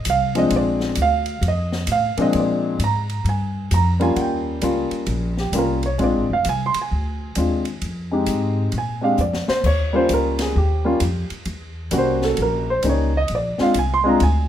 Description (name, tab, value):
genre	jazz piano trio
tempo	132 BPM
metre	4/4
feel	swing 65% on 8ths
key	unclear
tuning	A4 = 440 Hz
part	dark upright piano	melody	0.0-14.5 s	Bb2 to C6	-20 LUFS	equal	none
part	upright bass	bass	0.0-14.5 s	F1 to Bb2	-22 LUFS	equal	none
part	open jazz drum kit	drums	0.1-14.3 s	crash cymbal, hi-hat, kick drum, ride cymbal, snare drum	-31 LUFS	left 1 dB	none
room	light reverb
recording	minimal, uncompressed stereo recording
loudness	-18 LUFS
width	side -10 dB against mid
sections	0.0-2.3 A section; 2.3-14.5 A section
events	upright piano solo 0.0-14.5; drum fill 9.2-9.6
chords	0.0 F7(no3); 0.5 Bb7; 1.4 F7; 2.3 Bb7; 4.2 Eb7; 6.0 Bb7; 7.8 Fm7; 8.7 Bb7; 9.6 Eb7; 11.5 Edim7; 13.3 Bb7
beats	0.06 | 0.51 0.97 1.43 1.88 | 2.34 2.79 3.25 3.71 | 4.16 4.62 5.08 5.53 | 5.99 6.45 6.90 7.36 | 7.81 8.27 8.73 9.18 | 9.64 10.09 10.55 11.01 | 11.46 11.92 12.38 12.83 | 13.29 13.74 14.20